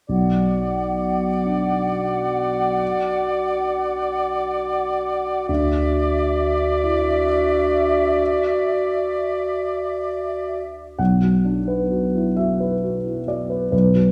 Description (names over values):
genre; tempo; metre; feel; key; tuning
cinematic; 44 BPM (dotted quarters); 6/8; rubato; unclear; A4 = 444 Hz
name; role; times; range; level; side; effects
mellow clarinet; second line; 0.1-10.6 s; F#4; -27 LUFS; equal; none
mellow flute section; second line; 0.1-10.7 s; E5 to F#5; -29 LUFS; equal; none
warm oboe; second line; 0.1-10.6 s; D5; -27 LUFS; equal; none
dark baby grand piano; accompaniment; 0.1-14.1 s; B1 to F#5; -23 LUFS; equal; none
room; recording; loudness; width
wet recital hall reverb, RT60 1.6 s; recorded in a church or concert hall; -21 LUFS; mono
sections
0.1-11.0 A section; 11.0-14.1 B section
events
none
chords
0.1 Bm; 5.5 Dadd9; 11.0 Bm